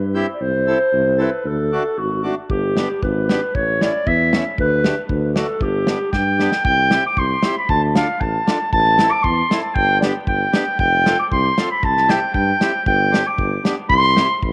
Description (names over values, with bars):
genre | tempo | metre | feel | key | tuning
alpine folk, alpine dance band | 116 BPM | 2/4 | straight | G major, C major from 6.7 s | A4 = 443 Hz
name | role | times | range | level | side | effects
dark clarinet | melody | 0.0-14.4 s | F#4 to D6 | -20 LUFS | equal | tape echo
warm tuba | bass | 0.0-14.5 s | F1 to G2 | -24 LUFS | equal | none
accordion | accompaniment | 0.1-14.3 s | A3 to A4 | -29 LUFS | equal | none
warm soul drum kit | drums | 2.5-14.5 s | hi-hat, kick drum, snare drum | -24 LUFS | equal | none
room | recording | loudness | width
wet spring reverb, RT60 1.6 s, small room ambience | none | -18 LUFS | mono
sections
0.0-6.7 A section; 6.7-14.5 B section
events
drum fill 6.1-6.7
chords
0.4 Am/C; 1.4 D; 2.5 G; 3.5 A; 4.6 Dsus4; 5.1 D; 5.6 G; 6.7 C; 7.7 Dm; 8.7 Am; 9.7 G; 10.8 F; 11.8 C; 12.9 Gsus4; 13.4 G; 13.9 C